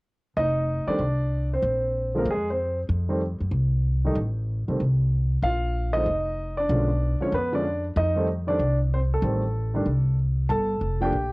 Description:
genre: jazz piano trio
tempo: 190 BPM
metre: 4/4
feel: swing 64% on 8ths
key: F mixolydian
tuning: A4 = 440 Hz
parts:
  - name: warm grand piano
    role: melody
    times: 0.4-11.3 s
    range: D3 to A5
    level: -25 LUFS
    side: equal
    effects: cassette tape
  - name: upright bass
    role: bass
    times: 0.4-11.3 s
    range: F1 to Gb2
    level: -24 LUFS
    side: equal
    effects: none
room: little or no reverb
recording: home recording on cassette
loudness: -22 LUFS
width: side -24 dB against mid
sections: 0.4-11.3 A section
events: none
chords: 0.4 F7(no3); 1.6 Bb7sus2; 2.9 F; 5.4 Bb; 6.7 Bdim7; 8.0 F7; 10.5 Gm7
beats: | 0.36 0.68 1.00 1.31 | 1.63 1.95 2.26 2.58 | 2.90 3.21 3.53 3.85 | 4.16 4.48 4.80 5.11 | 5.43 5.75 6.06 6.38 | 6.70 7.01 7.33 7.64 | 7.96 8.28 8.59 8.91 | 9.23 9.54 9.86 10.18 | 10.49 10.81 11.13

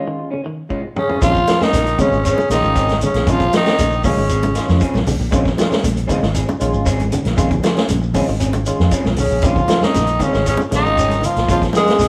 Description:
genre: afrobeat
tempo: 117 BPM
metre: 4/4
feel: straight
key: Bb minor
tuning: A4 = 440 Hz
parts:
  - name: barky tine electric piano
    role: accompaniment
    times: 0.0-11.9 s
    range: Ab3 to G4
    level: -28 LUFS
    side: equal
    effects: overdrive, phaser
  - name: electric guitar at the edge of break-up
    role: arpeggios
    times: 0.0-12.1 s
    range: Db3 to F3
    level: -28 LUFS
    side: equal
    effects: none
  - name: electric guitar at the edge of break-up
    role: stabs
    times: 0.0-12.0 s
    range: F3 to Ab4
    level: -27 LUFS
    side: equal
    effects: none
  - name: vintage drum kit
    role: drums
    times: 0.7-12.1 s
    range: hi-hat, kick drum, snare drum, toms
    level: -24 LUFS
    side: equal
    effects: none
  - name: growling tenor saxophone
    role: melody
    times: 1.0-5.0, 9.2-12.1 s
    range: Db4 to Ab4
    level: -21 LUFS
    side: equal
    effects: none
  - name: breathy alto saxophone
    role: second line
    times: 1.0-5.0, 9.2-12.1 s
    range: Db3 to Ab3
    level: -25 LUFS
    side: equal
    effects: none
  - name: bright trombone section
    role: second line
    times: 1.0-5.0, 9.2-12.1 s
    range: Db3 to Ab3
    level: -30 LUFS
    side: equal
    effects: none
  - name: hollow-body short-scale fingered electric bass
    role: bass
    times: 1.2-12.1 s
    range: Ab1 to F2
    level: -22 LUFS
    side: equal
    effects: none
  - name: shekere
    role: percussion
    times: 1.2-12.1 s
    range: none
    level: -29 LUFS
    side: equal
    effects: none
  - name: congas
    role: percussion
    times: 1.5-12.0 s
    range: none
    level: -27 LUFS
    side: equal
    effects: none
room: moderate studio reverb, RT60 0.9 s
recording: band playing live in one room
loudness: -17 LUFS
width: mono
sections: 0.0-1.2 A section; 1.2-12.1 B section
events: break 0.0-1.2; drum fill 0.7-1.2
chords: 0.0 Bbm7 (rootless); 1.2 Bbm9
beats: 0.19 0.71 | 1.22 1.74 2.25 2.76 | 3.27 3.79 4.30 4.81 | 5.33 5.84 6.35 6.87 | 7.38 7.89 8.41 8.92 | 9.43 9.95 10.46 10.98 | 11.49 12.00

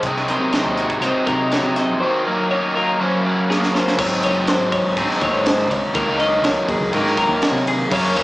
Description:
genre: math rock and midwest emo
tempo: 122 BPM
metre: 4/4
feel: straight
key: unclear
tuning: A4 = 439 Hz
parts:
  - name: twelve-string electric guitar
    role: accompaniment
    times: 0.0-6.0 s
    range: Gb2 to Gb4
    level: -25 LUFS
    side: right 1 dB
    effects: slapback echo
  - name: twelve-string electric guitar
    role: arpeggios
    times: 0.0-8.2 s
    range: Ab4 to Eb5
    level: -22 LUFS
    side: left 2 dB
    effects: slapback echo
  - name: overdriven semi-hollow guitar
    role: riff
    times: 0.0-8.2 s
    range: Gb2 to Eb4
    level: -20 LUFS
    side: equal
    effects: slapback echo
  - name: modern bright fingered electric bass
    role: bass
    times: 0.0-8.2 s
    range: Gb1 to C3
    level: -26 LUFS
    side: equal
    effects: none
  - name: crisp fusion drum kit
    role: drums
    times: 0.0-8.2 s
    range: crash cymbal, hi-hat, kick drum, ride cymbal, snare drum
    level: -23 LUFS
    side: equal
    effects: none
room: light reverb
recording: live gig heard through the venue's PA, club reverb, small speaker sound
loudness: -16 LUFS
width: side -18 dB against mid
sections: 0.0-4.0 A section; 4.0-8.2 B section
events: drum fill 3.5-4.0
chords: 0.0 Ab9/C; 2.0 Ebm9; 3.0 Gbmaj9; 4.0 Ab7sus4; 6.0 Ebm7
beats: | 0.04 0.53 1.02 1.52 | 2.01 2.50 3.00 3.49 | 3.98 4.48 4.97 5.46 | 5.95 6.44 6.93 7.42 | 7.92

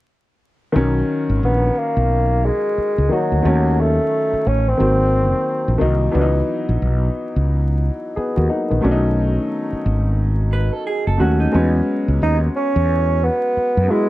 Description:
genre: R&B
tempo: 89 BPM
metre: 4/4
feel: swing 60% on 16ths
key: B major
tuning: A4 = 439 Hz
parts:
  - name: clear upright piano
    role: accompaniment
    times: 0.7-14.1 s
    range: D#3 to A#4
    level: -21 LUFS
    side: left 1 dB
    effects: none
  - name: mellow fretless electric bass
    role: bass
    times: 0.8-13.9 s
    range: F#1 to F#2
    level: -17 LUFS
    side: equal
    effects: none
  - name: mellow bassoon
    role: melody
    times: 1.4-5.8, 12.2-14.1 s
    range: F#3 to D#4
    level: -19 LUFS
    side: right 1 dB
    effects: slapback echo
  - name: electric guitar through a small old amp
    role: second line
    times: 10.5-11.7 s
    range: D#4 to B4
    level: -24 LUFS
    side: right 5 dB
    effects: none
room: little or no reverb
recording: dry, close 1970s-style studio recording, vinyl crackle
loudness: -16 LUFS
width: side -16 dB against mid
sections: 0.7-14.1 A section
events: none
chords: 0.7 Bmaj7; 3.4 D#m7b5; 4.8 G#7; 6.1 C#m11; 8.8 B7; 11.5 E69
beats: | 0.74 1.42 2.09 2.77 | 3.44 4.11 4.79 5.46 | 6.14 6.81 7.48 8.16 | 8.83 9.51 10.18 10.86 | 11.53 12.20 12.88 13.55

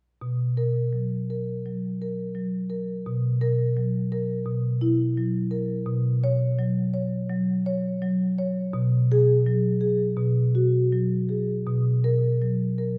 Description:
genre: classical, contemporary piece for solo marimba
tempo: 84 BPM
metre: 4/4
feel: rubato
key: unclear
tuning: A4 = 441 Hz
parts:
  - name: marimba with medium mallets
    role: solo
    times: 0.2-13.0 s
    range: B2 to C#5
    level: -25 LUFS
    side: equal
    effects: none
room: wet scoring stage reverb, RT60 1.6 s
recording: heard from further back in the room, nothing above 10.8 kHz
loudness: -25 LUFS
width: mono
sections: 0.2-11.7 A section; 11.7-13.0 B section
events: none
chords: 0.2 B5; 3.1 F#7/B; 5.9 Bsus2; 8.7 G#m7/B; 11.7 B5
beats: | 0.21 0.94 1.66 2.36 | 3.07 3.77 4.47 5.17 | 5.87 6.58 7.30 8.02 | 8.74 9.46 10.18 10.92 | 11.68 12.41

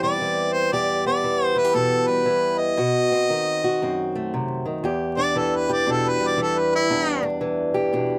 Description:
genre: acoustic country blues, solo or duo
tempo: 116 BPM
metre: 4/4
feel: swing 64% on 8ths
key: E minor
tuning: A4 = 440 Hz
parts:
  - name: clear harmonica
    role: melody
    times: 0.0-7.2 s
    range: E4 to D#5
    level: -25 LUFS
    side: equal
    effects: none
  - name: fingerpicked old ladder-braced acoustic guitar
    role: accompaniment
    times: 0.0-8.2 s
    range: E2 to G4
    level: -24 LUFS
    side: equal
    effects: none
room: light reverb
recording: close, detailed microphones, vinyl crackle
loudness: -22 LUFS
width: mono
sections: 0.0-4.8 A section; 4.8-8.2 B section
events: harmonica solo 4.8-8.2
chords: 0.0 Am7 (rootless); 0.7 Em7; 2.8 B7b9; 4.8 Em7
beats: 0.21 | 0.72 1.24 1.75 2.27 | 2.78 3.30 3.81 4.33 | 4.84 5.36 5.88 6.39 | 6.90 7.42 7.93

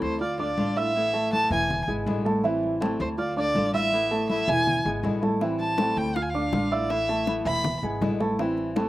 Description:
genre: latin, Cuban son and guajira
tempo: 161 BPM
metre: 4/4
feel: straight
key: A harmonic minor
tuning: A4 = 442 Hz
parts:
  - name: warm violin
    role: melody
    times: 0.0-7.8 s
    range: C5 to B5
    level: -26 LUFS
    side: equal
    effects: none
  - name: flamenco guitar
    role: accompaniment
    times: 0.0-8.9 s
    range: B2 to F4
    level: -32 LUFS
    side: left 4 dB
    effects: slapback echo
  - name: dark concert grand piano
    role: arpeggios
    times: 0.0-8.9 s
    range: E3 to F6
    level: -28 LUFS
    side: right 3 dB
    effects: none
  - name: upright bass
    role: bass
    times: 0.0-8.9 s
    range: E1 to D2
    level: -34 LUFS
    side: left 1 dB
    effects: none
  - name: congas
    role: percussion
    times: 0.0-8.9 s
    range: none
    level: -30 LUFS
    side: left 1 dB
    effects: none
  - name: bongos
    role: percussion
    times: 5.4-8.9 s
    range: none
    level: -34 LUFS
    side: left 7 dB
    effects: slapback echo
room: little or no reverb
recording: recorded outdoors, with no room sound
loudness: -23 LUFS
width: side -15 dB against mid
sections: 0.0-8.9 A section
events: none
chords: 0.2 Dm; 1.0 Asus2; 1.7 E7; 2.4 Am7; 3.2 Dm; 3.9 Asus2; 4.7 E7; 5.4 Am7; 6.2 Dm; 6.9 Asus2; 7.6 E7; 8.4 Am7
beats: 0.21 0.58 | 0.95 1.32 1.69 2.06 | 2.44 2.81 3.18 3.55 | 3.92 4.29 4.67 5.04 | 5.41 5.78 6.16 6.53 | 6.90 7.27 7.64 8.02 | 8.39 8.76

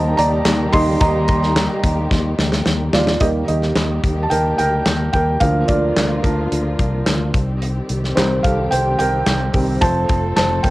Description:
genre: piano-driven pop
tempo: 109 BPM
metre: 4/4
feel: straight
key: unclear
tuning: A4 = 440 Hz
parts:
  - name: felt-muted upright piano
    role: accompaniment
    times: 0.0-10.7 s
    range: D3 to C6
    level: -19 LUFS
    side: right 1 dB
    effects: cassette tape
  - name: warm studio string section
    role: sustained chords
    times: 0.0-10.7 s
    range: D3 to A4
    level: -26 LUFS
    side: left 1 dB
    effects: cassette tape
  - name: fingered electric bass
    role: bass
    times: 0.0-10.7 s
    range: F1 to Eb2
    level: -21 LUFS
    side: equal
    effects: none
  - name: modern studio drum kit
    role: drums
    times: 0.2-10.7 s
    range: handclaps, hi-hat, kick drum, snare drum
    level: -20 LUFS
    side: equal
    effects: cassette tape
room: light reverb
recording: home recording on cassette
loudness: -15 LUFS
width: side -18 dB against mid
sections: 0.0-3.2 A section; 3.2-10.7 B section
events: felt piano solo 0.0-3.2, 3.2-10.7; drum fill 2.1-3.2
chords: 0.0 Eb; 5.4 Bb/D; 7.3 Cm; 9.8 F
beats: 0.46 | 1.01 1.56 2.11 2.66 | 3.21 3.76 4.31 4.86 | 5.41 5.96 6.51 7.07 | 7.62 8.17 8.72 9.27 | 9.82 10.37

